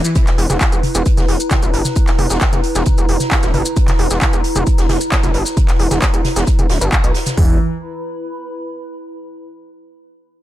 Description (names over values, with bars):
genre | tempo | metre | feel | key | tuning
driving peak-time techno | 133 BPM | 4/4 | straight | unclear | A4 = 440 Hz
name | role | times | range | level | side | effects
overdriven synth lead | riff | 0.0-0.1, 7.4-7.6 s | E3 | -22 LUFS | right 1 dB | distortion, phaser, lush chorus, sidechain pumping, ping-pong delay
techno drum kit | drums | 0.0-7.4 s | handclaps, hi-hat, shaker, toms | -20 LUFS | left 1 dB | sidechain pumping on hats, sidechain pumping on perc, sidechain pumping on toms
warbly tape-like pad | texture | 0.0-9.1 s | E4 to B5 | -23 LUFS | right 1 dB | chorus, built-in reverb, sidechain pumping
soft-mallet drum kit | drums | 0.2-7.4 s | hi-hat, snare drum | -30 LUFS | right 2 dB | high-pass filter on hats, high-pass filter on snare, high-pass filter on room
techno drum kit | drums | 0.2-7.5 s | hi-hat, kick drum, toms | -15 LUFS | equal | none
gritty driven synth bass | bass | 0.4-7.6 s | D1 to B1 | -18 LUFS | equal | sidechain pumping
room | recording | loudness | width
digital ambience | none | -13 LUFS | side -14 dB against mid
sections
0.0-7.4 A section; 7.4-9.2 B section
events
none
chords
0.0 E5